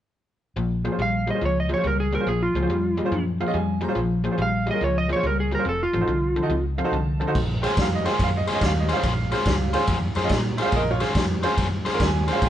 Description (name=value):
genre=electric blues shuffle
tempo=142 BPM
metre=4/4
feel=swing 66% on 8ths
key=Bb minor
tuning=A4 = 440 Hz
part: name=biting overdriven guitar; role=riff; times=0.6-12.5 s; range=F2 to C5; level=-27 LUFS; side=left 3 dB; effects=none
part: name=vintage muted fingered electric bass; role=bass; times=0.6-12.5 s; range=F1 to Bb2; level=-26 LUFS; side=equal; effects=none
part: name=bright upright piano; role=accompaniment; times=0.8-12.5 s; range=Db4 to Bb5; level=-27 LUFS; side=right 2 dB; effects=none
part: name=electric slide guitar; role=melody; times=1.0-6.6 s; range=F4 to F5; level=-25 LUFS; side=right 2 dB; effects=none
part: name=raw garage drum kit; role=drums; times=7.4-12.5 s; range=crash cymbal, kick drum, ride cymbal, snare drum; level=-24 LUFS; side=equal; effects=none
room=light reverb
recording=band playing live in one room, nothing above 10.3 kHz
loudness=-20 LUFS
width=side -11 dB against mid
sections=0.6-7.4 A section; 7.4-12.5 B section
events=upright piano fill 3.1-4.0, 6.5-7.4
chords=0.6 Bbm7; 5.7 F7b9; 7.4 Bbm9